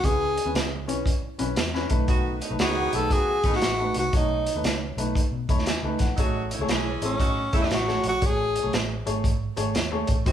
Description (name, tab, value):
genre	uptempo 1960s-style soul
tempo	117 BPM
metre	4/4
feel	swing 65% on 8ths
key	unclear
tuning	A4 = 440 Hz
part	breathy tenor saxophone	melody	0.0-8.8 s	C#4 to A4	-25 LUFS	left 1 dB	none
part	warm upright piano	accompaniment	0.0-10.3 s	E3 to B5	-30 LUFS	equal	none
part	vintage muted fingered electric bass	bass	0.0-10.3 s	G#1 to B2	-31 LUFS	equal	none
part	crunchy breakbeat drum kit	drums	0.0-10.3 s	hi-hat, kick drum, snare drum	-26 LUFS	equal	none
part	clear saxophone section	second line	2.1-10.3 s	B2 to G#4	-30 LUFS	right 2 dB	none
room	moderate large studio reverb, RT60 1.2 s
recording	band playing live in one room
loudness	-22 LUFS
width	side -10 dB against mid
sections	0.0-10.3 A section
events	upright piano fill 5.2-6.2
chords	0.0 C#m7; 1.8 B7; 6.2 Amaj7